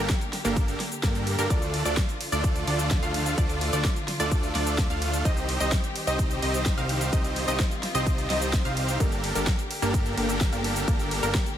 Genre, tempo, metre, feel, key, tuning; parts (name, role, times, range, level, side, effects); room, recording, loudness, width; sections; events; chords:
EDM, festival progressive house; 128 BPM; 4/4; straight; G minor; A4 = 440 Hz
warm symphonic string section; sustained chords; 0.0-11.6 s; D3 to G4; -35 LUFS; left 2 dB; sidechain pumping
wide unison pluck; arpeggios; 0.0-11.4 s; Bb3 to F5; -33 LUFS; right 1 dB; sidechain pumping, dub echo
supersaw chords; riff; 0.0-11.4 s; A3 to F5; -30 LUFS; right 1 dB; sidechain pumping, dub echo
fat analog bass; bass; 0.0-11.4 s; G1 to G2; -30 LUFS; equal; sidechain pumping
big-room dance drum kit; drums; 0.1-11.6 s; cabasa, hi-hat, ride cymbal, snare drum; -32 LUFS; equal; overdrive
electronic kick drum; drums; 0.1-11.4 s; -26 LUFS; equal
little or no reverb; -23 LUFS; side -10 dB against mid
0.0-11.6 A section
0.0 Gmadd9; 1.5 Dm; 5.3 Cm; 9.0 Gmadd9